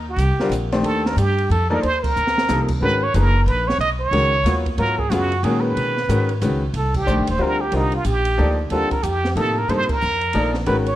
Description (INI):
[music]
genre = modal jazz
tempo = 183 BPM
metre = 3/4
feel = swing 62% on 8ths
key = unclear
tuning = A4 = 440 Hz
[part]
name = upright bass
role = bass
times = 0.0-11.0 s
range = Eb1 to Cb3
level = -21 LUFS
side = equal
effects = none
[part]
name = trumpet with plunger mute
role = melody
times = 0.1-11.0 s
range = Eb4 to Eb5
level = -21 LUFS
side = right 2 dB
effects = none
[part]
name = open jazz drum kit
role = drums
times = 0.2-10.9 s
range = crash cymbal, hi-hat, kick drum, ride cymbal, snare drum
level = -29 LUFS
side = right 2 dB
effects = none
[part]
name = bright upright piano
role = accompaniment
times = 0.4-10.9 s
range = C3 to D5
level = -23 LUFS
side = left 2 dB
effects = none
[sound]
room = light reverb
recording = none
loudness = -17 LUFS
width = side -14 dB against mid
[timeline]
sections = 0.0-11.0 A section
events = band accent 2.0, 6.9, 9.8; drum fill 2.2-2.5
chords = 0.0 Cm11; 2.8 Abm11; 6.7 Cm11